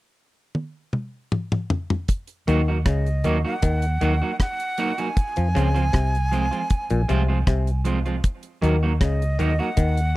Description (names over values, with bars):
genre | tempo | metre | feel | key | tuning
roots reggae | 78 BPM | 4/4 | straight | Eb dorian | A4 = 440 Hz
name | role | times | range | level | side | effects
deep reggae drum kit | drums | 0.5-10.1 s | hi-hat, kick drum, rim click, toms | -22 LUFS | equal | none
clean electric guitar | accompaniment | 2.5-9.7 s | F3 to Gb4 | -27 LUFS | right 4 dB | tape echo
muted clav | riff | 2.5-10.0 s | Bb2 to F3 | -28 LUFS | left 5 dB | none
vintage muted fingered electric bass | bass | 2.5-10.1 s | Bb1 to F2 | -21 LUFS | equal | none
breathy jazz flute | melody | 2.9-10.2 s | Eb5 to Ab5 | -28 LUFS | right 1 dB | tape echo
room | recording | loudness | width
little or no reverb | dry, close 1970s-style studio recording | -20 LUFS | side -18 dB against mid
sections
0.0-2.1 A section; 2.1-10.2 B section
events
drum fill 0.5-2.1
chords
0.0 N.C.; 2.1 Ebm; 5.2 Fm; 8.2 Ebm